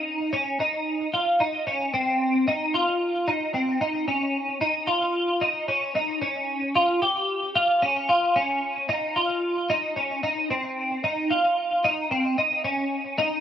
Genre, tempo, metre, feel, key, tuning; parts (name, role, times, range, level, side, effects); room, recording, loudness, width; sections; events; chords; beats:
dream pop; 112 BPM; 4/4; straight; A4 = 438 Hz
twelve-string electric guitar; solo; 0.0-13.4 s; C4 to G4; -22 LUFS; equal; ensemble chorus, tape echo
moderate small room reverb, RT60 0.5 s; rough home demo mix; -22 LUFS; side -10 dB against mid
0.0-1.9 A section; 1.9-13.4 B section
0.33 0.86 1.40 | 1.93 2.47 3.01 3.54 | 4.08 4.61 5.15 5.68 | 6.22 6.76 7.29 7.83 | 8.36 8.90 9.43 9.97 | 10.51 11.04 11.58 12.11 | 12.65 13.18